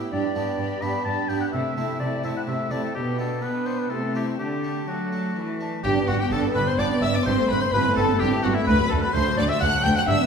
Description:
classical, baroque-style concerto movement with solo episodes; 127 BPM; 3/4; straight; G major; A4 = 439 Hz
rich chamber violin section; melody; 0.0-10.3 s; E5 to G6; -33 LUFS; left 4 dB
clear chamber violin section; second line; 0.0-10.3 s; D4 to G5; -29 LUFS; left 2 dB
clear studio viola section; accompaniment; 0.0-10.3 s; F#3 to E4; -28 LUFS; right 2 dB
harpsichord; accompaniment; 0.0-10.3 s; D2 to G4; -33 LUFS; equal
clear chamber cello section; bass; 0.0-10.2 s; D2 to B3; -28 LUFS; right 1 dB
clear oboe; melody; 0.1-10.2 s; E4 to B5; -28 LUFS; left 1 dB
rich studio double bass section; bass; 5.8-10.2 s; G1 to D2; -28 LUFS; right 1 dB
wet recital hall reverb, RT60 1.8 s; heard from further back in the room; -21 LUFS; side -6 dB against mid
0.0-5.8 A section; 5.8-10.3 B section
0.1 G; 1.5 Am/C; 2.9 G/B; 3.9 Am/C; 4.4 D; 5.8 G; 7.3 Am/G; 8.7 D
| 0.12 0.59 1.06 | 1.53 2.00 2.48 | 2.95 3.42 3.90 | 4.39 4.88 5.36 | 5.84 6.32 6.79 | 7.27 7.74 8.21 | 8.67 9.14 9.61 | 10.08

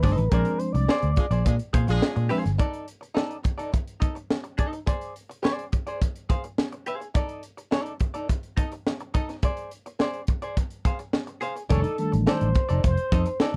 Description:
funk; 105 BPM; 4/4; straight; A4 = 440 Hz
expressive synth lead; melody; 0.0-1.5, 11.7-13.4 s; A4 to D5; -32 LUFS; equal; chorus
archtop guitar, miked and amplified; accompaniment; 0.0-13.6 s; Eb4 to F5; -34 LUFS; equal; wah
mellow tine electric piano; stabs; 0.0-2.4, 11.7-12.5 s; Eb3 to D4; -31 LUFS; equal
fingered electric bass; bass; 0.0-2.6, 11.7-13.6 s; F1 to Bb2; -26 LUFS; equal
crisp fusion drum kit; drums; 0.0-13.6 s; hi-hat, kick drum, snare drum; -27 LUFS; equal
warm horn section; second line; 1.2-2.3 s; Ab3 to Ab4; -33 LUFS; equal
little or no reverb; -26 LUFS; mono
0.0-2.6 A section; 2.6-11.7 B section; 11.7-13.6 C section
analog synth lead solo 0.0-2.6
0.3 Bb9; 2.6 D5; 4.9 Ab; 7.1 D5; 9.4 Ab; 11.7 F13
| 0.32 0.89 1.45 2.02 | 2.59 3.16 3.73 4.30 | 4.87 5.44 6.01 6.58 | 7.15 7.72 8.29 8.86 | 9.43 10.00 10.57 11.14 | 11.70 12.27 12.84 13.41

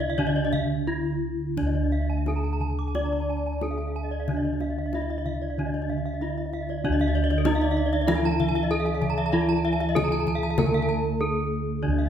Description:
Balinese gamelan; 86-96 BPM; 4/4; straight; D pelog; A4 = 436 Hz
gamelan-type bronze metallophone; melody; 0.0-12.1 s; D4 to D5; -29 LUFS; left 1 dB
gamelan-type bronze metallophone; accompaniment; 0.0-12.1 s; D3 to D4; -31 LUFS; right 2 dB
gamelan-type bronze metallophone; arpeggios; 0.0-12.1 s; D5 to D6; -34 LUFS; right 4 dB
gamelan-type bossed gongs; bass; 0.0-12.1 s; D2 to E4+50c; -27 LUFS; right 1 dB
gamelan-type bronze metallophone; arpeggios; 0.2-12.1 s; Bb4-40c to D6; -33 LUFS; left 5 dB
kendang; percussion; 0.5-12.1 s; -32 LUFS; left 2 dB
bansuri; second line; 7.6-12.1 s; D5 to A5-42c; -36 LUFS; right 4 dB
wet recital hall reverb, RT60 1.2 s; heard from further back in the room; -23 LUFS; side -9 dB against mid
0.0-6.8 A section; 6.8-12.1 B section
break 0.5-1.6, 10.9-11.8
0.18 0.88 | 1.57 2.27 2.95 3.62 | 4.28 4.94 5.58 6.22 | 6.84 7.47 8.09 8.71 | 9.34 9.96 10.58 11.21 | 11.83

